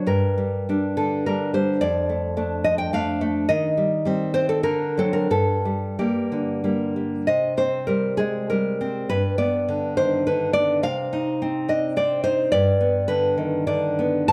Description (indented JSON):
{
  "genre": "romantic piece for solo classical guitar",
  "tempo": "89-111 BPM",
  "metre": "3/4",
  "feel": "rubato",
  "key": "G minor, C minor from 7.3 s",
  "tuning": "A4 = 440 Hz",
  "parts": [
    { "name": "nylon-string guitar", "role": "solo", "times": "0.0-14.3 s", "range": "F2 to A5", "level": "-22 LUFS", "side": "equal", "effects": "none" }
  ],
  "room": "moderate recital hall reverb, RT60 1.5 s",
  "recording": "dark, warm production",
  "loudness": "-23 LUFS",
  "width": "mono",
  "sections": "0.0-7.3 A section; 7.3-14.3 B section",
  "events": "none",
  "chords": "0.1 Gm; 1.8 Dm/F; 3.5 Cm/Eb; 4.7 D7; 5.3 Gm; 7.3 C5; 9.1 G; 10.8 Cm; 12.5 G"
}